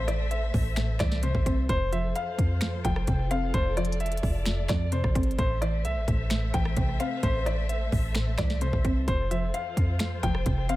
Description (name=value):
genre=hip hop, trap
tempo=130 BPM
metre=4/4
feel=half-time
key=A minor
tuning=A4 = 440 Hz
part: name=warm concert grand piano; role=melody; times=0.0-10.8 s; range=C5 to G5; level=-33 LUFS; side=equal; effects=low-pass filter, analog delay
part: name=mallet-like synth pluck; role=accompaniment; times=0.0-10.8 s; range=F2 to C4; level=-32 LUFS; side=equal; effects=chorus, low-pass filter
part: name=dark symphonic string section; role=sustained chords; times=0.0-10.8 s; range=F3 to E5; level=-37 LUFS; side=left 2 dB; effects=none
part: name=warm 808-style bass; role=bass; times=0.0-10.8 s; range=F1 to F2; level=-28 LUFS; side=equal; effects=none
part: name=trap drum kit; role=drums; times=0.1-10.8 s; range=finger snaps, hi-hat, kick drum, rim click, snare drum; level=-29 LUFS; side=equal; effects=none
room=little or no reverb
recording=echo-heavy mix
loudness=-24 LUFS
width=side -16 dB against mid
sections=0.0-10.8 A section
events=none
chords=0.0 Am; 1.7 F; 5.4 Am; 9.1 F